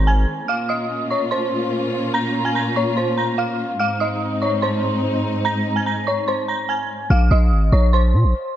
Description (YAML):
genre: hip hop, trap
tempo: 145 BPM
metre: 4/4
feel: half-time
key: Bb minor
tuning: A4 = 444 Hz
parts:
  - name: dark detuned synth bell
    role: melody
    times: 0.0-8.6 s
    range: C5 to Bb6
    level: -21 LUFS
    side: right 1 dB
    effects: chorus, tremolo, low-pass filter
  - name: warm symphonic string section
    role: sustained chords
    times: 0.0-7.1 s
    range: Ab2 to F4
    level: -23 LUFS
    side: equal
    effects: none
  - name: hard-hitting 808-style bass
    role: bass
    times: 0.0-0.3, 7.1-8.3 s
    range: Ab1 to Bb2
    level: -14 LUFS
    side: equal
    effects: none
room: small room ambience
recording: dark, warm production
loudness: -17 LUFS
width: side -11 dB against mid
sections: 0.5-7.1 A section; 7.1-8.6 B section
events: none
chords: 0.5 Bbm; 3.8 Ab